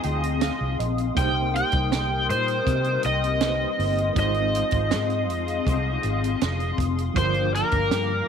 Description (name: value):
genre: indie pop, bedroom pop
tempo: 80 BPM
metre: 4/4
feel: straight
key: C minor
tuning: A4 = 439 Hz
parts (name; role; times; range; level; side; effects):
- overdriven slide guitar; melody; 0.0-8.3 s; Bb4 to G5; -26 LUFS; equal; analog chorus, slapback echo
- electric guitar through a small old amp; accompaniment; 0.0-8.3 s; G2 to Ab4; -30 LUFS; left 14 dB; ensemble chorus, warbly pitch drift
- reed electric piano; accompaniment; 0.0-8.3 s; D3 to C6; -32 LUFS; right 14 dB; fast tremolo, cassette tape
- hollow soft pad; sustained chords; 0.0-8.3 s; Ab4 to Eb6; -32 LUFS; left 1 dB; ensemble chorus
- vintage muted fingered electric bass; bass; 0.0-8.2 s; F1 to C3; -27 LUFS; equal; none
- compact cocktail drum kit; drums; 0.0-8.1 s; hi-hat, kick drum, snare drum; -28 LUFS; right 3 dB; none
room: light reverb, small room ambience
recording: 1960s-style stereo with parts hard left and right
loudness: -21 LUFS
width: side -7 dB against mid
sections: 0.0-8.3 A section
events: reed electric piano fill 0.0-1.2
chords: 0.0 Fm7; 1.2 Cm7; 4.2 Ab6; 7.2 Gm7